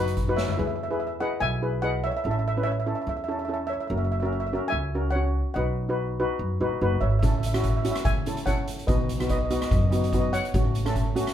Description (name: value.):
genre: calypso.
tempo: 145 BPM.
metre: 4/4.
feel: swing 54% on 16ths.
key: E major.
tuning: A4 = 441 Hz.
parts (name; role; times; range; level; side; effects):
steel pan; accompaniment; 0.0-11.3 s; A3 to C#5; -29 LUFS; left 1 dB; none.
upright bass; bass; 0.0-11.2 s; D#1 to F#2; -28 LUFS; right 1 dB; none.
street-band drum kit; drums; 0.1-0.6, 7.2-11.3 s; hi-hat, kick drum, rim click, snare drum, toms; -27 LUFS; equal; none.
steel pan; melody; 0.4-11.3 s; B4 to G#5; -30 LUFS; right 1 dB; none.
room: moderate studio ambience, RT60 0.5 s.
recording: band playing live in one room.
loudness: -23 LUFS.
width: side -10 dB against mid.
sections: 0.6-11.3 A section.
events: drum fill 0.4.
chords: 0.0 B; 0.6 E; 2.2 A; 3.9 F#7; 5.6 B; 7.2 A6; 8.9 B; 10.5 F#m/A.